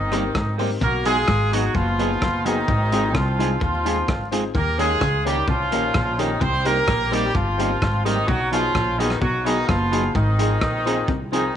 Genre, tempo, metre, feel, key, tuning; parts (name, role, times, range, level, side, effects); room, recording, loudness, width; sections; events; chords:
ska; 128 BPM; 4/4; straight; A4 = 440 Hz
clear horn section; melody; 0.0-11.5 s; D#3 to C5; -22 LUFS; right 1 dB; slapback echo
clean electric guitar; riff; 0.0-11.2 s; F#2 to Eb3; -32 LUFS; left 6 dB
upright bass; bass; 0.0-11.5 s; F#1 to Eb2; -24 LUFS; equal
semi-hollow electric guitar; accompaniment; 0.1-11.4 s; Eb3 to G#4; -29 LUFS; right 9 dB
dark upright piano; stabs; 0.1-11.5 s; B3 to Bb4; -28 LUFS; left 10 dB
crunchy breakbeat drum kit; drums; 0.1-11.4 s; hi-hat, kick drum, rim click; -26 LUFS; equal
light reverb, small room ambience; 1960s-style stereo with parts hard left and right, vinyl crackle, nothing above 10.9 kHz; -18 LUFS; side -9 dB against mid
0.0-11.6 A section
0.0 Cm7; 0.8 B6; 2.7 Ab6; 4.5 Eb7; 6.4 Cm7; 8.3 B6; 10.2 Ab6